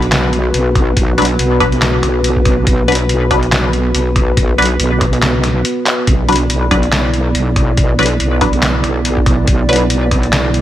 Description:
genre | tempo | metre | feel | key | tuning
deep dubstep | 141 BPM | 4/4 | swing 56% on 16ths, half-time | B minor | A4 = 440 Hz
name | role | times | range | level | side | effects
dark analog pad | sustained chords | 0.0-10.6 s | B3 to D5 | -18 LUFS | right 1 dB | chorus
wobble bass | bass | 0.0-10.6 s | B1 | -15 LUFS | equal | chorus
trip hop sampler-style drum kit | drums | 0.0-10.6 s | finger snaps, handclaps, hi-hat, snare drum | -18 LUFS | equal | none
electronic kick drum | drums | 0.8-10.2 s | none | -15 LUFS | equal | none
filtered dub chord stab | stabs | 1.2-9.8 s | F#3 to B4 | -18 LUFS | left 1 dB | phaser, dub echo
room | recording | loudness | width
light reverb, digital ambience | none | -11 LUFS | side -12 dB against mid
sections
0.0-10.6 A section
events
break 5.6-6.1; drum fill 5.9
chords
0.0 Bm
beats
0.12 0.54 | 0.97 1.39 1.82 2.24 | 2.67 3.09 3.52 3.94 | 4.37 4.80 5.22 5.65 | 6.07 6.50 6.92 7.35 | 7.78 8.20 8.63 9.05 | 9.48 9.90 10.33

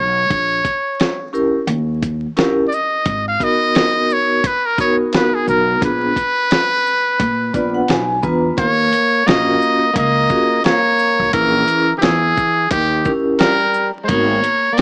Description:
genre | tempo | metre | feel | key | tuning
hip hop, jazz-hop | 87 BPM | 4/4 | swing 57% on 16ths | Eb minor | A4 = 440 Hz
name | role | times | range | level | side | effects
trumpet with metal mute | melody | 0.0-14.8 s | G4 to F5 | -18 LUFS | equal | none
upright bass | bass | 0.0-14.8 s | Ab1 to Bb2 | -24 LUFS | equal | none
dusty soul sampler-style drum kit | drums | 0.3-14.8 s | hi-hat, kick drum, shaker, snare drum | -21 LUFS | equal | vintage 12-bit sampler grit
vibraphone with medium hard mallets | accompaniment | 1.3-14.4 s | Cb4 to Bb5 | -21 LUFS | equal | none
electric guitar at the edge of break-up | second line | 8.6-14.8 s | Eb3 to Cb4 | -24 LUFS | equal | none
room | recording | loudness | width
light reverb | vinyl crackle, small speaker sound | -16 LUFS | mono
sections
0.0-8.6 A section; 8.6-14.8 B section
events
vibraphone fill 7.2-8.6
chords
0.3 Bbdim; 1.7 Eb7b9; 3.1 Abm9 (rootless); 5.8 Bb7b9; 8.6 Ebm9; 11.3 Bbm7b5; 12.7 Eb7b9; 14.1 Abm9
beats
| 0.30 0.99 1.68 2.37 | 3.06 3.75 4.44 5.13 | 5.82 6.51 7.20 7.88 | 8.57 9.27 9.95 10.64 | 11.33 12.02 12.71 13.40 | 14.09 14.78

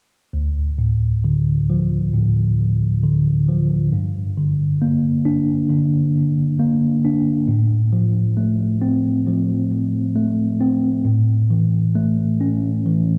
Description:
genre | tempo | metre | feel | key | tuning
folk | 67 BPM | 4/4 | straight | unclear | A4 = 440 Hz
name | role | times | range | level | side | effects
tine electric piano | solo | 0.3-13.2 s | D2 to D4 | -19 LUFS | equal | overdrive, tape echo
room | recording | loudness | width
wet large studio reverb, RT60 1.3 s | dark, warm production | -19 LUFS | mono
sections
0.3-13.2 A section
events
none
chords
0.3 Dm; 3.9 Gm; 7.5 F/A; 11.0 A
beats
| 0.34 1.24 2.14 3.03 | 3.92 4.81 5.70 6.59 | 7.48 8.37 9.26 10.15 | 11.04 11.95 12.85

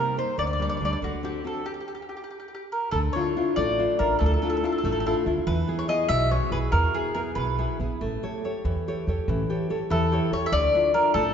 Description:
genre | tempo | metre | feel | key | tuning
italian folk, Italian serenade | 95 BPM (dotted quarters) | 6/8 | straight | D harmonic minor | A4 = 441 Hz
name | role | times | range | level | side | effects
mandolin | melody | 0.0-7.8, 9.9-11.3 s | F#4 to E5 | -26 LUFS | left 1 dB | none
nylon-string guitar | accompaniment | 0.0-11.3 s | B2 to C#5 | -28 LUFS | left 1 dB | none
upright bass | bass | 0.0-11.3 s | A1 to C3 | -28 LUFS | right 1 dB | none
room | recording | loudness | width
wet scoring stage reverb, RT60 2.0 s | recorded in a church or concert hall, nothing above 7.7 kHz | -23 LUFS | side -8 dB against mid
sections
0.0-2.9 A section; 2.9-11.3 B section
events
stop 1.6-2.9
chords
0.4 Gm/D; 1.0 D7; 1.6 N.C.; 2.9 Dmadd9; 5.5 E; 8.0 A7; 10.5 Dmadd9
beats
| 0.38 1.01 | 1.65 2.29 | 2.93 3.57 | 4.21 4.84 | 5.47 6.10 | 6.73 7.37 | 8.01 8.64 | 9.28 9.91 | 10.53 11.16

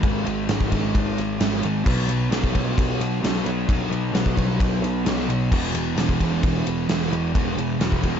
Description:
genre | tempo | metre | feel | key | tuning
rock, shoegaze and dream pop | 131 BPM | 4/4 | straight | E major | A4 = 440 Hz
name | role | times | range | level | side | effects
fuzz guitar | riff | 0.0-8.2 s | E2 to B3 | -24 LUFS | right 1 dB | distortion, lush chorus
picked electric bass | bass | 0.0-8.2 s | E1 to B1 | -27 LUFS | equal | none
gated 80s drum kit | drums | 0.0-8.1 s | crash cymbal, kick drum, ride cymbal, snare drum | -24 LUFS | equal | none
room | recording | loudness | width
studio ambience | dark, warm production, nothing above 7.6 kHz | -20 LUFS | side -8 dB against mid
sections
0.0-8.2 A section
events
none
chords
0.0 G#5; 1.9 B5; 5.5 E5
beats
| 0.04 0.49 0.95 1.40 | 1.86 2.31 2.77 3.23 | 3.68 4.14 4.60 5.06 | 5.51 5.97 6.43 6.89 | 7.34 7.80

